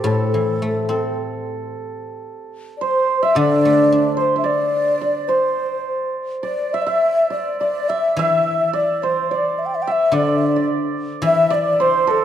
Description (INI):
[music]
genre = chinese traditional, Chinese chamber ensemble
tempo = 108 BPM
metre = 4/4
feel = rubato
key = unclear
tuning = A4 = 439 Hz
[part]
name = mellow hollow xiao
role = melody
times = 0.0-12.2 s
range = A4 to G5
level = -21 LUFS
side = left 1 dB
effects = none
[part]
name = hammered dulcimer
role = second line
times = 0.0-12.2 s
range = G4 to E5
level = -23 LUFS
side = right 7 dB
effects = none
[part]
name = mellow low xiao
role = second line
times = 0.0-12.2 s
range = A4 to G5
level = -22 LUFS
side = left 3 dB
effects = none
[part]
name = guzheng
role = accompaniment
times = 0.0-12.2 s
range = A2 to D4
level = -21 LUFS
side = left 1 dB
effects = none
[sound]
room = moderate concert hall reverb, RT60 1.9 s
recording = dark, warm production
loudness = -16 LUFS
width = side -10 dB against mid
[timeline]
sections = 0.0-12.2 A section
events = none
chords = none